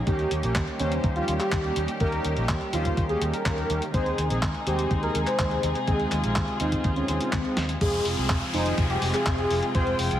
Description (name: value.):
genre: italo disco.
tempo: 124 BPM.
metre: 4/4.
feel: straight.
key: F minor.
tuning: A4 = 436 Hz.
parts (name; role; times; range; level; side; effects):
warm chamber string section; sustained chords; 0.0-10.2 s; C3 to G5; -31 LUFS; equal; none.
wide unison lead; melody; 0.1-10.0 s; C4 to C5; -29 LUFS; equal; ping-pong delay.
analog synth brass; stabs; 0.1-10.2 s; Ab3 to C5; -32 LUFS; equal; chorus.
vintage muted fingered electric bass; bass; 0.1-10.2 s; F1 to Eb2; -29 LUFS; equal; none.
clean 12-bit digital drum machine; drums; 0.1-10.2 s; crash cymbal, handclaps, hi-hat, snare drum; -32 LUFS; left 1 dB; none.
electronic kick drum; drums; 0.1-9.8 s; none; -28 LUFS; equal; none.
downlifter; sound effects; 7.8-10.2 s; none; -34 LUFS; left 1 dB; none.
room: moderate digital room reverb, RT60 1.1 s, digital ambience.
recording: heavily compressed radio sound, vinyl crackle.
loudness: -23 LUFS.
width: side -11 dB against mid.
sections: 0.0-7.8 A section; 7.8-10.2 B section.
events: drum fill 7.6.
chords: 0.1 Eb7; 3.9 Ab; 7.8 Fm.